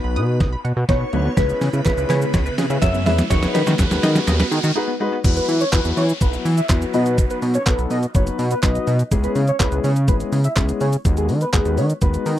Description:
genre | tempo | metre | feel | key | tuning
dance-pop | 124 BPM | 4/4 | straight | C# minor | A4 = 439 Hz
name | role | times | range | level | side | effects
shimmering bell with halo | melody | 0.0-4.2 s | B4 to E5 | -25 LUFS | left 1 dB | ensemble chorus, slapback echo
warm concert grand piano | accompaniment | 0.0-12.3 s | F#3 to C#5 | -25 LUFS | left 5 dB | sidechain pumping
tight sequenced synth | arpeggios | 0.0-5.2 s | F#3 to D#6 | -28 LUFS | right 3 dB | chorus, phaser, sidechain pumping, slapback echo
fat analog bass | bass | 0.0-12.4 s | F#1 to E3 | -20 LUFS | equal | sidechain pumping
riser and downlifter | sound effects | 0.1-9.1 s | none | -31 LUFS | right 1 dB | none
detuned 8-bit digital drum machine | drums | 0.2-12.4 s | crash cymbal, handclaps, hi-hat, kick drum, shaker, snare drum | -20 LUFS | equal | none
airy breathy pad | sustained chords | 1.7-5.2 s | C#3 to F#4 | -30 LUFS | right 1 dB | none
group handclap | percussion | 1.9-11.6 s | none | -34 LUFS | right 10 dB | none
wide unison lead | melody | 5.4-12.1 s | G#4 to E5 | -25 LUFS | right 1 dB | sidechain pumping, slapback echo
room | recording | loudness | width
little or no reverb | dry, close 1970s-style studio recording | -16 LUFS | side -12 dB against mid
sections
0.0-5.2 A section; 5.2-12.4 B section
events
build-up 0.0-5.2; drum fill 0.0-4.8; riser 0.1-5.2; break 4.8-5.2; drop 5.2-12.4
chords
0.0 B; 1.4 C#m7; 3.3 G#m7/D#; 5.2 Esus2; 6.9 B; 9.1 C#m7; 11.1 G#m7/D#

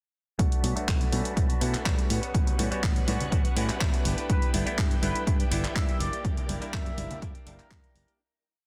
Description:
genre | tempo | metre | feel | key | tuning
filtered disco house | 123 BPM | 4/4 | straight | B minor | A4 = 441 Hz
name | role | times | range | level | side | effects
string machine, full ensemble | sustained chords | 0.4-8.2 s | E4 to C#6 | -42 LUFS | equal | phaser, ensemble chorus, vintage 12-bit sampler grit, sidechain pumping, low-pass filter
direct-recorded clean electric guitar | riff | 0.4-8.2 s | E3 to G4 | -41 LUFS | equal | sidechain pumping, low-pass filter
fingered electric bass | bass | 0.4-8.0 s | F#1 to B2 | -34 LUFS | equal | sidechain pumping, low-pass filter
electronic kick drum | drums | 0.4-7.8 s | none | -29 LUFS | equal | none
house drum kit | drums | 0.4-8.2 s | handclaps, hi-hat | -36 LUFS | equal | sidechain pumping on hats, soft clipping on snare
egg shaker and congas | percussion | 0.4-8.2 s | none | -38 LUFS | equal | sidechain pumping on perc, low-pass filter on perc
bright clav | accompaniment | 0.6-8.2 s | G3 to C#5 | -39 LUFS | equal | phaser, sidechain pumping, low-pass filter
dark trumpet section | melody | 4.3-8.1 s | A#4 to E5 | -39 LUFS | equal | sidechain pumping, low-pass filter
room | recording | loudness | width
little or no reverb | dense, heavily limited modern master | -27 LUFS | mono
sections
0.4-8.2 groove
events
filter sweep 0.4-8.2; fade-out 5.6-8.2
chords
0.4 Bm7; 2.1 A13; 4.1 G6; 6.0 F#7b9b13

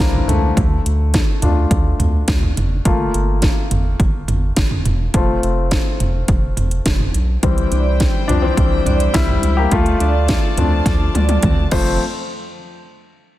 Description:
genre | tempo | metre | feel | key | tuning
piano-driven pop | 105 BPM | 4/4 | straight | unclear | A4 = 439 Hz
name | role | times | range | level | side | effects
clear baby grand piano | accompaniment | 0.0-12.0 s | F2 to C5 | -21 LUFS | left 4 dB | none
round analog bass | bass | 0.0-12.0 s | E1 to D2 | -18 LUFS | equal | none
house drum kit | drums | 0.0-11.9 s | crash cymbal, hi-hat, kick drum, snare drum, toms | -18 LUFS | equal | overdrive
warm studio string section | sustained chords | 7.4-12.0 s | F3 to A5 | -29 LUFS | left 2 dB | none
fingerpicked steel-string acoustic guitar | riff | 7.7-12.0 s | C4 to E4 | -26 LUFS | right 7 dB | none
room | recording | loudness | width
light reverb, studio reverb | dense, heavily limited modern master | -14 LUFS | side -15 dB against mid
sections
0.0-7.4 A section; 7.4-12.0 B section; 12.0-13.4 C section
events
grand piano solo 0.0-7.4, 7.4-12.0; drum fill 10.9-12.0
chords
0.0 C; 0.6 Dm; 2.9 Gm7; 5.1 F; 7.4 C; 9.7 Dm; 11.7 F; 12.0 N.C.

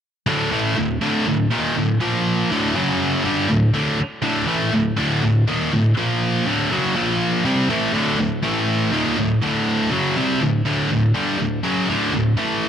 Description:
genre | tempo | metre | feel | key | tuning
metal | 122 BPM | 4/4 | straight | unclear | A4 = 440 Hz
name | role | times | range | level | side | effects
scooped high-gain guitar | solo | 0.3-12.7 s | D2 to C4 | -17 LUFS | equal | distortion, tape echo
room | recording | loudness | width
light reverb | dry, close 1970s-style studio recording | -17 LUFS | side -8 dB against mid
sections
0.0-7.9 A section; 7.9-12.7 B section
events
none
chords
0.0 D5; 2.0 Bb5; 2.5 D5; 2.8 F#5; 3.2 D5; 6.0 Bb5; 6.5 D; 7.0 Bb5; 7.4 Am7; 7.9 D5; 8.4 A5; 8.9 D

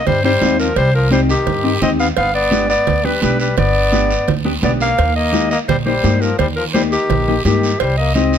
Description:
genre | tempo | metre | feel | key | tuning
latin, cumbia | 171 BPM | 4/4 | straight | C minor | A4 = 444 Hz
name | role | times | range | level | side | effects
warm clarinet | melody | 0.0-8.4 s | G4 to F5 | -18 LUFS | equal | none
growling trombone | second line | 0.0-8.4 s | Eb3 to C4 | -23 LUFS | left 6 dB | none
upright bass | bass | 0.1-8.4 s | G1 to G2 | -19 LUFS | equal | none
congas | percussion | 0.1-8.3 s | none | -23 LUFS | right 6 dB | none
cowbell and timbales | percussion | 0.1-8.0 s | none | -24 LUFS | right 8 dB | none
guiro | percussion | 0.1-8.4 s | none | -27 LUFS | right 5 dB | none
mellow electric guitar | accompaniment | 0.2-8.3 s | Bb3 to G4 | -20 LUFS | left 3 dB | none
room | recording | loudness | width
light reverb | close, detailed microphones | -13 LUFS | side -8 dB against mid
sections
0.0-8.4 A section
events
none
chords
0.0 Cm; 2.2 G; 5.0 Eb; 7.8 Cm

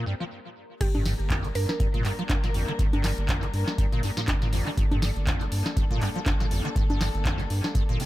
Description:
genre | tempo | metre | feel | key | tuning
acid house | 121 BPM | 4/4 | swing 57% on 16ths | G minor | A4 = 440 Hz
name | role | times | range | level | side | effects
warm chamber string section | sustained chords | 0.0-8.1 s | G3 to Bb4 | -36 LUFS | left 3 dB | sidechain pumping
liquid acid bass | riff | 0.0-8.1 s | F2 to G3 | -31 LUFS | equal | overdrive, ensemble chorus, tape echo
mallet-like synth pluck | melody | 0.8-1.8 s | G4 to Bb4 | -35 LUFS | right 3 dB | chorus, analog delay
saturated sub bass | bass | 0.8-8.0 s | G1 to G2 | -28 LUFS | equal | sidechain pumping
booming analog drum machine | drums | 0.8-8.1 s | congas, crash cymbal, handclaps, hi-hat, snare drum, toms | -30 LUFS | equal | low-pass filter on hats, low-pass filter on cymbals, low-pass filter on toms, low-pass filter on perc, low-pass filter on snare, low-pass filter on room, analog delay
electronic kick drum | drums | 0.8-7.9 s | none | -26 LUFS | equal | none
room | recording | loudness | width
little or no reverb | echo-heavy mix | -23 LUFS | side -16 dB against mid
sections
0.8-8.1 A section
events
stop 0.3-0.8; drop 0.8-8.1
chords
0.0 Gm

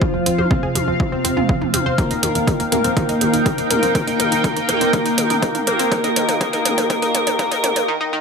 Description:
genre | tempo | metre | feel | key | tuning
melodic techno | 122 BPM | 4/4 | straight | unclear | A4 = 439 Hz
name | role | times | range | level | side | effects
wide unison lead | melody | 0.0-7.9 s | C3 to Bb3 | -23 LUFS | left 1 dB | wide subtle chorus, sidechain pumping, ping-pong delay
airy dreamy lead | second line | 0.0-7.9 s | C4 to Bb4 | -24 LUFS | equal | chorus, sidechain pumping, digital delay
sweeping resonant pad | sustained chords | 0.0-7.9 s | Eb4 to G5 | -24 LUFS | equal | chorus, sidechain pumping
analog pluck | arpeggios | 0.0-8.2 s | Eb3 to C5 | -25 LUFS | left 1 dB | chorus, sidechain pumping, digital delay
electronic kick drum | drums | 0.0-7.5 s | none | -20 LUFS | equal | studio reverb
techno drum kit | drums | 0.0-7.9 s | hi-hat, toms | -23 LUFS | right 1 dB | studio reverb
granular cloud pad | texture | 0.0-7.9 s | Eb4 to G5 | -28 LUFS | equal | built-in reverb, ensemble chorus, sidechain pumping
tight sequencer bass | bass | 0.1-7.9 s | Eb1 to F1 | -30 LUFS | equal | sidechain pumping
room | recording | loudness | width
wet plate reverb, RT60 1.9 s | bright 1980s-style digital production, high-pass filter | -16 LUFS | side -5 dB against mid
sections
0.0-8.2 A section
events
build-up 0.0-8.2; drum fill 0.0-7.9; filter sweep on synth pluck 0.0-8.2; filter sweep on analog synth lead 0.0-8.2; filter sweep on digital synth lead 0.0-8.2; filter sweep 0.0-8.2; break 7.9-8.2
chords
0.0 F5; 2.0 Eb6

